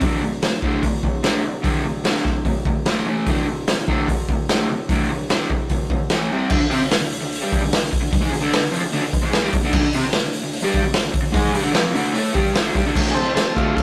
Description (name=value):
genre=garage rock duo or trio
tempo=148 BPM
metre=4/4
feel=straight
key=unclear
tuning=A4 = 440 Hz
part: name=raw garage guitar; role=riff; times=0.0-13.8 s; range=D2 to C4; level=-24 LUFS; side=equal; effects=overdrive
part: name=raw garage drum kit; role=drums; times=0.0-13.8 s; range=crash cymbal, hi-hat, kick drum, snare drum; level=-23 LUFS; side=equal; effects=none
part: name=overdriven combo organ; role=melody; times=13.1-13.8 s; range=A3 to A4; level=-24 LUFS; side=equal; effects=none
room=light reverb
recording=rough rehearsal-room recording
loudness=-20 LUFS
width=mono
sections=0.0-6.5 A section; 6.5-13.0 B section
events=none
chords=0.0 D5; 3.1 A5; 3.3 D5; 6.1 A5; 6.3 C5; 6.5 D5